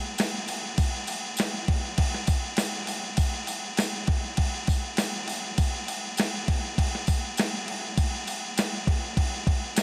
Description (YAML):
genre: rock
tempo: 100 BPM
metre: 4/4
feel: straight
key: none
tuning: none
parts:
  - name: crisp 8-bit digital drum machine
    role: drums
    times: 0.2-9.8 s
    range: crash cymbal, kick drum, snare drum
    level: -28 LUFS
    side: equal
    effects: none
  - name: tambourine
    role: percussion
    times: 0.2-9.8 s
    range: none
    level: -41 LUFS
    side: equal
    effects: none
room: moderate huge ambient reverb, RT60 7.8 s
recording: dreamy mix soaked in reverb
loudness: -28 LUFS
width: mono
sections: 0.0-9.8 A section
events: none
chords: none